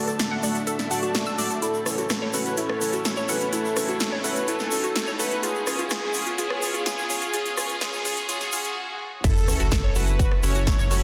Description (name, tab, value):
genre	progressive house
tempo	126 BPM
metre	4/4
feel	straight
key	F# minor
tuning	A4 = 440 Hz
part	soft supersaw	melody	0.0-11.0 s	G#4 to A5	-32 LUFS	equal	sidechain pumping, low-pass filter, delay
part	lush unison pad	sustained chords	0.0-9.2 s	A3 to G#5	-36 LUFS	equal	chorus, phaser, sidechain pumping
part	chorused polysynth	stabs	0.0-11.0 s	A3 to F#5	-34 LUFS	equal	sidechain pumping, delay
part	riser, swell and sub drop	sound effects	0.8-11.0 s	none	-37 LUFS	equal	none
part	analog pluck	arpeggios	0.1-11.0 s	E4 to E6	-35 LUFS	equal	chorus, sidechain pumping, delay
part	big-room dance drum kit	drums	0.1-11.0 s	crash cymbal, hi-hat, rim click, snare drum	-32 LUFS	equal	none
part	tube shaker	percussion	0.1-11.0 s	none	-36 LUFS	equal	none
part	round analog bass	bass	9.2-11.0 s	F#1	-26 LUFS	equal	sidechain pumping
part	electronic kick drum	drums	9.2-10.8 s	none	-25 LUFS	equal	none
room	wet lush hall reverb, RT60 1.8 s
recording	dense, heavily limited modern master, high-pass filter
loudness	-25 LUFS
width	mono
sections	0.0-9.2 A section; 9.2-11.0 B section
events	build-up 0.0-9.2; filter sweep on synth arpeggio sound 0.0-9.2; filter sweep on analog polysynth 0.0-9.2; filter sweep on supersaw synth 0.0-9.2; filter sweep 0.0-9.2; riser 1.6-8.8; swell 8.3-9.2; break 8.8-9.2; drop 9.2-11.0; impact 9.2-11.0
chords	0.0 D; 1.6 F#m7; 5.4 C#7; 9.2 F#m7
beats	0.19 0.67 1.15 | 1.62 2.10 2.58 3.05 | 3.53 4.00 4.48 4.96 | 5.43 5.91 6.38 6.86 | 7.34 7.81 8.29 8.77 | 9.24 9.72 10.19 10.67